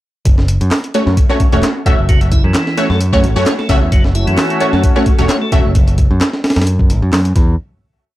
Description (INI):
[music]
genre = breakbeat, breaks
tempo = 131 BPM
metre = 4/4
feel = swing 54% on 16ths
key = F# minor pentatonic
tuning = A4 = 440 Hz
[part]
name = modern bright picked electric bass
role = bass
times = 0.3-7.5 s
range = E1 to F#2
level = -14 LUFS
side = equal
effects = none
[part]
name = breakbeat sampler-style drum kit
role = drums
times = 0.3-7.5 s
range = hi-hat, kick drum, snare drum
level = -13 LUFS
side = equal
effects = none
[part]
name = electronic handclaps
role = drums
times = 0.7-7.2 s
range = none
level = -22 LUFS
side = equal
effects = none
[part]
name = orchestra-hit-like synth stab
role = stabs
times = 0.9-5.6 s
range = A3 to E5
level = -17 LUFS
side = equal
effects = built-in reverb, phaser, tape echo
[part]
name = tonewheel organ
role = riff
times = 2.1-5.5 s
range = E3 to E4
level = -22 LUFS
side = right 1 dB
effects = overdrive, slow rotary speaker, tape echo
[part]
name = lush unison pad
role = sustained chords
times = 3.9-5.7 s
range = A3 to F#4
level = -21 LUFS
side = left 1 dB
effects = chorus, sidechain pumping
[sound]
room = little or no reverb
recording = dry, gritty hardware recording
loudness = -11 LUFS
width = side -15 dB against mid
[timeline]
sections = 0.3-7.6 groove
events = none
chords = 0.3 F#m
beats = | 0.26 0.72 1.17 1.63 | 2.09 2.55 3.01 3.46 | 3.92 4.38 4.84 5.30 | 5.75 6.21 6.67 7.13